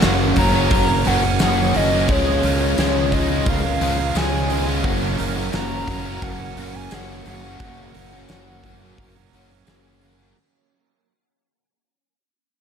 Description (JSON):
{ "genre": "rock, shoegaze and dream pop", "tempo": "87 BPM", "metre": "4/4", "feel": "straight", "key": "F# major", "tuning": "A4 = 439 Hz", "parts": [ { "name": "twelve-string electric guitar", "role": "arpeggios", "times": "0.0-10.4 s", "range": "F#4 to A#4", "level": "-32 LUFS", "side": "right 11 dB", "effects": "ensemble chorus, slapback echo" }, { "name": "biting overdriven guitar", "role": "riff", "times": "0.0-10.4 s", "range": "F#2 to C#4", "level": "-25 LUFS", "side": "right 12 dB", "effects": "reverse reverb" }, { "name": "overdriven semi-hollow guitar", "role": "riff", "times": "0.0-10.4 s", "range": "F#2 to F#4", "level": "-25 LUFS", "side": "left 11 dB", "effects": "analog chorus" }, { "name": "growling fingered electric bass", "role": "bass", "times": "0.0-10.3 s", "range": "F#1 to C#2", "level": "-24 LUFS", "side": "equal", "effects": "overdrive" }, { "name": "huge arena drum kit", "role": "drums", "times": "0.0-10.2 s", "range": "hi-hat, kick drum, snare drum", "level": "-23 LUFS", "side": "equal", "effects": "none" }, { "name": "tambourine", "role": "percussion", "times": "0.0-9.8 s", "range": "none", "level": "-35 LUFS", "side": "left 19 dB", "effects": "none" }, { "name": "reedy FM lead", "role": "melody", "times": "0.4-9.6 s", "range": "C#5 to A#5", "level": "-25 LUFS", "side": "left 2 dB", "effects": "chorus, slapback echo" } ], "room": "light reverb, studio ambience", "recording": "none", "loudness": "-17 LUFS", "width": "side -7 dB against mid", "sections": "0.0-10.4 A section", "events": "fade-out 0.0-10.4", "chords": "0.0 F#; 2.1 C#; 4.9 F#add9" }